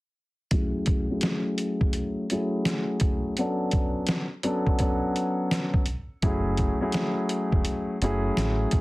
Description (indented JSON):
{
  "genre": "hip hop, boom-bap hip-hop",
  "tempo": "84 BPM",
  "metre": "4/4",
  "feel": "swing 63% on 16ths",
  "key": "unclear",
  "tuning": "A4 = 440 Hz",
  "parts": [
    { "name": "dark baby grand piano", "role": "accompaniment", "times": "0.5-8.8 s", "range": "F#3 to A4", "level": "-27 LUFS", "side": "left 1 dB", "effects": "cassette tape, low-pass filter" },
    { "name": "trip hop sampler-style drum kit", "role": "drums", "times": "0.5-8.8 s", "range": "hi-hat, kick drum, snare drum", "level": "-26 LUFS", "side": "equal", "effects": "overdrive" },
    { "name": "deep dub fingered electric bass", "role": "bass", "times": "6.2-8.8 s", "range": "E1 to A1", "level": "-27 LUFS", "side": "equal", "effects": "none" }
  ],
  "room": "light reverb",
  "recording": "heavily compressed radio sound, multiband compression",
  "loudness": "-24 LUFS",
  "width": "side -20 dB against mid",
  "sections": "0.5-8.8 A section",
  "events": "filter sweep on grand piano 0.5-8.8",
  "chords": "0.5 F#m9; 3.4 Bm7; 6.2 F#m9",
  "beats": "| 0.52 1.23 1.94 2.66 | 3.37 4.09 4.80 5.51 | 6.23 6.94 7.66 8.37"
}